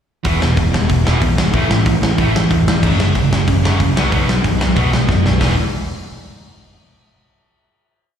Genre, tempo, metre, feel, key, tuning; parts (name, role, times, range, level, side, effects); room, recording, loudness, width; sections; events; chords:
punk rock; 186 BPM; 4/4; straight; A4 = 441 Hz
distorted electric guitar; riff; 0.2-5.5 s; E2 to B3; -20 LUFS; left 9 dB; distortion, slapback echo
distorted electric guitar; riff; 0.2-5.5 s; E2 to B3; -19 LUFS; right 8 dB; distortion, slapback echo
growling picked electric bass; bass; 0.2-5.6 s; E1 to F#2; -18 LUFS; equal; overdrive
big rock drum kit; drums; 0.2-5.5 s; crash cymbal, hi-hat, kick drum, snare drum; -18 LUFS; left 1 dB
small room ambience; live gig heard through the venue's PA, recital hall reverb; -13 LUFS; side -8 dB against mid
0.2-5.4 verse; 5.4-6.7 final chord
drum fill 5.1-5.4
0.2 E; 1.5 A5; 2.8 F#5; 4.0 B5; 5.4 E5